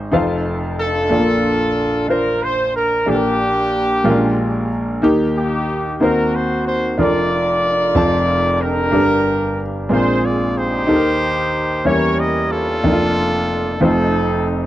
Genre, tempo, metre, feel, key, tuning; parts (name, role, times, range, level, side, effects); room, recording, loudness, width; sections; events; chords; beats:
gospel; 62 BPM (dotted quarters); 6/8; straight; Bb major; A4 = 438 Hz
clear concert grand piano; accompaniment; 0.0-14.7 s; F1 to A5; -17 LUFS; equal
clear horn section; melody; 0.8-14.7 s; Bb3 to Eb5; -18 LUFS; equal
light reverb; dry, close 1970s-style studio recording; -15 LUFS; side -14 dB against mid
0.0-1.1 A section; 1.1-14.7 A section
0.1 F7; 1.1 Bb; 3.1 Gm/Bb; 4.0 Bb7; 5.0 Eb; 6.0 Ebm6; 7.0 Bb/F; 8.0 F; 8.9 Gm; 9.9 Bb9; 10.9 Eb; 11.9 Edim7; 12.8 Bb/F; 13.8 F7
0.14 | 1.12 2.10 | 3.07 4.05 | 5.02 6.00 | 6.97 7.95 | 8.93 9.90 | 10.88 11.85 | 12.83 13.81